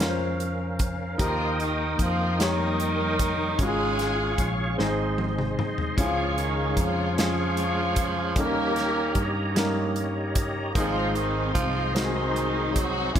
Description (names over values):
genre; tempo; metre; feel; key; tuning
slow gospel; 50 BPM (dotted quarters); 6/8; straight; unclear; A4 = 440 Hz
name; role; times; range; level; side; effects
warm concert grand piano; accompaniment; 0.0-13.2 s; Ab2 to Db5; -30 LUFS; left 1 dB; none
bright tonewheel organ; sustained chords; 0.0-13.2 s; Db4 to Eb6; -32 LUFS; right 1 dB; slow rotary speaker, chorus vibrato
fingered electric bass; bass; 0.0-13.2 s; Ab1 to G2; -30 LUFS; equal; none
modern studio drum kit; drums; 0.0-13.2 s; hi-hat, kick drum, snare drum, toms; -28 LUFS; equal; none
raspy tenor saxophone; melody; 1.2-13.2 s; Eb3 to Bb3; -30 LUFS; right 3 dB; none
warm studio string section; melody; 1.2-13.2 s; G3 to Bb4; -31 LUFS; left 3 dB; none
room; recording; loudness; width
moderate concert hall reverb, RT60 2.0 s; none; -23 LUFS; side -9 dB against mid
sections
0.0-13.2 A section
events
drum fill 4.8-6.0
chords
0.0 Bbm; 1.2 Eb; 3.6 Db/Ab; 4.8 Ab; 6.0 Db; 8.4 Eb7; 10.8 Ab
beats
| 1.19 2.39 | 3.58 4.78 | 5.98 7.17 | 8.37 9.56 | 10.76 11.96 | 13.15